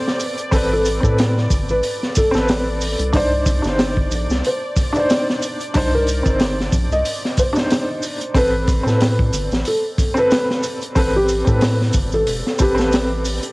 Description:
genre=trip hop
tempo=92 BPM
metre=4/4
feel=swing 56% on 16ths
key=unclear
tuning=A4 = 440 Hz
part: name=felt-muted upright piano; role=melody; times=0.0-13.5 s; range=G4 to Eb5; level=-22 LUFS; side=equal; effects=cassette tape, tape echo
part: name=dark upright piano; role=accompaniment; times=0.0-13.5 s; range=C4 to C5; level=-22 LUFS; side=equal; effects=tremolo, tape echo
part: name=bowed-like drone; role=texture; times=0.0-13.5 s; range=D5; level=-32 LUFS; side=equal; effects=built-in reverb
part: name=crunchy breakbeat drum kit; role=drums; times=0.1-13.5 s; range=hi-hat, kick drum, snare drum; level=-20 LUFS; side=equal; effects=cassette tape
part: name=maracas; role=percussion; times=0.2-13.5 s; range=none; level=-30 LUFS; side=right 3 dB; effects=none
part: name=round analog bass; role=bass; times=0.5-13.4 s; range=E1 to A2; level=-21 LUFS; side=equal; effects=none
room=light reverb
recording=home recording on cassette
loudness=-16 LUFS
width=side -24 dB against mid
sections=0.0-13.5 A section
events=none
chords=0.0 Amadd9; 3.1 Cmadd9; 8.4 Amadd9

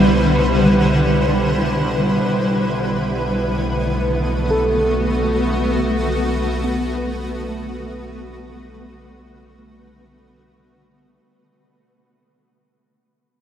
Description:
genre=ambient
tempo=free time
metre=none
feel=none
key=unclear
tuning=A4 = 440 Hz
part: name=shimmering ambient pad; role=sustained chords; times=0.0-11.3 s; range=D3 to C5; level=-19 LUFS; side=equal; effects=chorus, built-in reverb
part: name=muted felt-like synth keys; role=arpeggios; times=0.0-11.8 s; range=A3 to B4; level=-25 LUFS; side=right 1 dB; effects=chorus, tape echo
part: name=warm sub bass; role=bass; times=0.0-11.2 s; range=B1 to C2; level=-25 LUFS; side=equal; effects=none
part: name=bowed-like drone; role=drone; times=0.0-11.4 s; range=B2 to G3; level=-23 LUFS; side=equal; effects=built-in reverb
room=wet cathedral reverb, RT60 5.4 s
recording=dark, warm production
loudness=-16 LUFS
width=side -9 dB against mid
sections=0.0-11.2 A section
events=fade-out 0.0-11.2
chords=0.0 Cmaj9; 2.3 Bm7

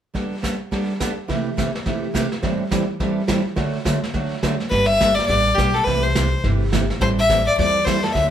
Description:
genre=country, western swing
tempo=210 BPM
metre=4/4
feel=swing 61% on 8ths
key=G major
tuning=A4 = 441 Hz
part: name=picked steel-string acoustic guitar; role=accompaniment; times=0.1-8.3 s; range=A2 to A4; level=-23 LUFS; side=right 2 dB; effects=none
part: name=vintage brush drum kit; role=drums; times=0.1-8.3 s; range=brushed snare drum, hi-hat, kick drum, snare drum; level=-25 LUFS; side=equal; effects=none
part: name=clear fiddle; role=melody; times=4.7-8.3 s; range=G4 to E5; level=-18 LUFS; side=left 2 dB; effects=none
part: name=upright bass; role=bass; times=4.7-8.3 s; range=G1 to E2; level=-22 LUFS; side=equal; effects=none
room=wet studio reverb, RT60 0.7 s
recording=band playing live in one room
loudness=-18 LUFS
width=side -10 dB against mid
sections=0.1-4.7 A section; 4.7-8.3 B section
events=none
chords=0.1 Gadd9; 1.3 C6; 2.4 Am7; 3.6 D; 4.7 Gadd9; 5.9 C6; 7.0 Am7

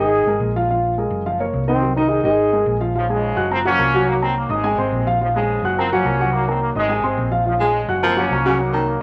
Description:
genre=latin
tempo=213 BPM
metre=4/4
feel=straight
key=Bb minor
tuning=A4 = 440 Hz
part: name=dark trombone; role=melody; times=0.0-2.8 s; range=C4 to Ab4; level=-21 LUFS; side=equal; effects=none
part: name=dark concert grand piano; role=accompaniment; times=0.0-9.0 s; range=Eb3 to Gb6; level=-22 LUFS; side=equal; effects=none
part: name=hollow-body short-scale fingered electric bass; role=bass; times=0.0-9.0 s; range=Gb1 to C2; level=-26 LUFS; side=equal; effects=none
part: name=brilliant trombone section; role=melody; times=3.0-9.0 s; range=Ab2 to Db4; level=-25 LUFS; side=equal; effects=none
part: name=warm baritone saxophone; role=second line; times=7.6-9.0 s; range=Db3 to Ab3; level=-24 LUFS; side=equal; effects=none
room=moderate large studio reverb, RT60 1.2 s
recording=nothing above 10.6 kHz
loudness=-19 LUFS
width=mono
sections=0.0-2.9 A section; 2.9-9.0 B section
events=trombone solo 0.0-2.9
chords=0.1 Absus2; 0.7 Bb5; 1.3 Gbmaj7; 1.8 Cm7b5; 2.4 Absus2; 2.9 Bbm7; 3.5 Gbmaj7; 4.1 Cm7b5; 4.6 Abadd9; 5.2 Bbm7; 5.8 Gbmaj7; 6.3 Cm7b5; 6.9 Abadd9; 7.5 Bbm7; 8.0 Gbmaj7

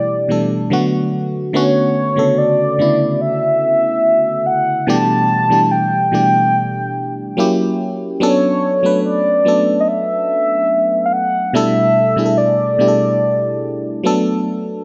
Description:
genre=R&B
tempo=72 BPM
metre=4/4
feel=straight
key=B minor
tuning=A4 = 441 Hz
part: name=mellow horn-like synth lead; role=melody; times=0.0-14.5 s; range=C#5 to A5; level=-17 LUFS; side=equal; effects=chorus
part: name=FM electric piano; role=accompaniment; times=0.0-14.8 s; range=B2 to B4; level=-19 LUFS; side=equal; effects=chorus
room=moderate lush hall reverb, RT60 2.1 s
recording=none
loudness=-16 LUFS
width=mono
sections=0.0-1.5 A section; 1.5-14.8 B section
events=none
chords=0.0 A7sus4/B; 0.7 Bm7; 1.5 Bm9; 4.9 A7sus4/B; 7.4 F#7b9; 8.2 Bm9; 11.5 A7sus4/B; 14.0 Bm7

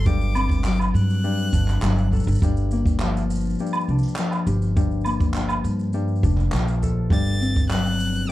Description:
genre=folktronica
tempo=102 BPM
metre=4/4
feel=straight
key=G minor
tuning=A4 = 442 Hz
part: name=clear violin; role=melody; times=0.0-2.1, 7.1-8.3 s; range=D6 to A6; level=-30 LUFS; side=left 2 dB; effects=none
part: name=Celtic harp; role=arpeggios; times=0.0-8.3 s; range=G2 to A4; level=-25 LUFS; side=left 4 dB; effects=none
part: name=upright bass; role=bass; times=0.0-8.2 s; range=F1 to G2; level=-22 LUFS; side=equal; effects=none
part: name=kick drum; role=drums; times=0.1-7.7 s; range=none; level=-22 LUFS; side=equal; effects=none
part: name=shaker, woodblock and handclaps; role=drums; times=0.1-8.3 s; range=none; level=-30 LUFS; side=right 2 dB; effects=none
room=little or no reverb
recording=none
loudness=-19 LUFS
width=side -15 dB against mid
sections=0.0-8.3 A section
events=none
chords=0.0 D7/G; 2.4 Gm7; 4.8 Bbmaj7/G; 7.1 D7/G

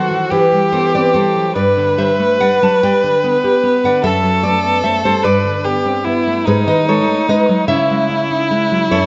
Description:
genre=romantic duo for violin and classical guitar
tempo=49 BPM (dotted quarters)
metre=6/8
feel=rubato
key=unclear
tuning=A4 = 442 Hz
part: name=rich violin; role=melody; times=0.0-9.1 s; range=D#4 to B4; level=-17 LUFS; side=equal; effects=none
part: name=nylon-string guitar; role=accompaniment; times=0.0-9.1 s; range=F#2 to A5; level=-18 LUFS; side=equal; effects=none
room=moderate recital hall reverb, RT60 1.6 s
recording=dark, warm production, nothing above 8.0 kHz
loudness=-14 LUFS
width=mono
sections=0.0-9.1 A section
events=none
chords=0.3 Em; 1.6 G; 4.0 D13/F#; 5.2 G; 6.5 G#m; 7.7 C#m

